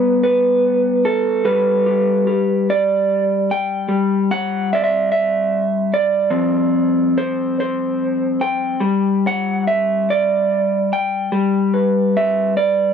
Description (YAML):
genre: folk, solo fingerstyle acoustic guitar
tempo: 48 BPM (dotted quarters)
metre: 6/8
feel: rubato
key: G major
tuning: A4 = 440 Hz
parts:
  - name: electric guitar through a small old amp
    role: solo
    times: 0.0-12.9 s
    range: F3 to G5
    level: -15 LUFS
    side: equal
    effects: none
room: little or no reverb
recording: dry, close 1970s-style studio recording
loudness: -15 LUFS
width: side -7 dB against mid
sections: 0.0-12.9 A section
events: none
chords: 0.0 G; 3.9 N.C.; 6.3 Fsus2; 8.8 G